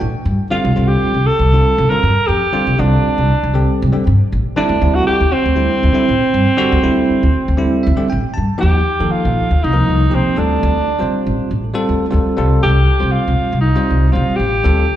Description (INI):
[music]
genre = electric jazz fusion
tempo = 119 BPM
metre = 4/4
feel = straight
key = unclear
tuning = A4 = 443 Hz
[part]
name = bell-like tine electric piano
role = accompaniment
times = 0.0-15.0 s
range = D3 to A5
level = -19 LUFS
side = equal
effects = fast stereo tremolo, slapback echo
[part]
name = upright bass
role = bass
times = 0.0-14.9 s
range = A1 to Eb3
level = -15 LUFS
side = equal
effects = none
[part]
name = breathy alto saxophone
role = melody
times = 0.5-15.0 s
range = C4 to Bb4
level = -17 LUFS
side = right 1 dB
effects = slapback echo
[sound]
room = light reverb, small room ambience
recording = live gig heard through the venue's PA, club reverb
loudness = -12 LUFS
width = side -12 dB against mid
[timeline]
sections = 0.0-8.6 A section; 8.6-15.0 B section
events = tine electric piano fill 0.0-0.5, 7.6-8.6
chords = 0.0 Dsus4 (rootless); 0.5 Csus24; 4.6 D9sus4; 8.6 Eb; 9.6 Cm7; 10.4 Dm7; 12.4 F7/C